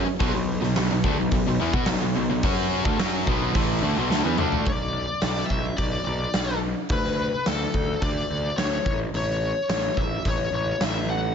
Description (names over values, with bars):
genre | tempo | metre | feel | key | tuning
hard rock | 107 BPM | 4/4 | straight | B minor | A4 = 440 Hz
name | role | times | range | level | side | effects
crunchy overdriven guitar | riff | 0.0-4.7 s | A2 to F#4 | -27 LUFS | right 14 dB | none
distorted electric guitar | riff | 0.0-4.7 s | A2 to F#4 | -27 LUFS | left 17 dB | overdrive
fuzz picked electric bass | bass | 0.0-11.3 s | A1 to B2 | -27 LUFS | equal | overdrive
huge arena drum kit | drums | 0.2-10.9 s | hi-hat, kick drum, snare drum, toms | -27 LUFS | equal | none
high-gain lead guitar | melody | 4.7-11.3 s | A4 to F#5 | -27 LUFS | left 3 dB | distortion
room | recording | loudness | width
light reverb | nothing above 7.7 kHz | -22 LUFS | side -7 dB against mid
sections
0.0-4.7 A section; 4.7-11.3 B section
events
drum fill 4.1-4.7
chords
0.0 Bm; 6.9 D5; 8.9 A